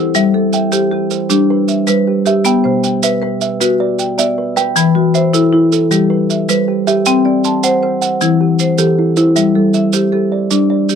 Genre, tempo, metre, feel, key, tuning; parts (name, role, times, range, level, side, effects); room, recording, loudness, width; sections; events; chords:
southern african traditional, mbira-style interlocking cycle; 104 BPM (dotted quarters); 12/8; straight; G major; A4 = 440 Hz
kalimba; arpeggios; 0.0-11.0 s; B2 to C6; -16 LUFS; right 8 dB
marimba with hard mallets; arpeggios; 0.0-11.0 s; E3 to A5; -13 LUFS; left 5 dB
maracas; percussion; 0.1-11.0 s; -20 LUFS; right 15 dB
little or no reverb; dry, close 1970s-style studio recording; -11 LUFS; side -7 dB against mid
0.0-9.4 A section; 9.4-11.0 A section
0.2 G; 2.5 Bm; 4.8 Em; 5.9 G; 7.1 C; 8.2 Em; 9.4 G5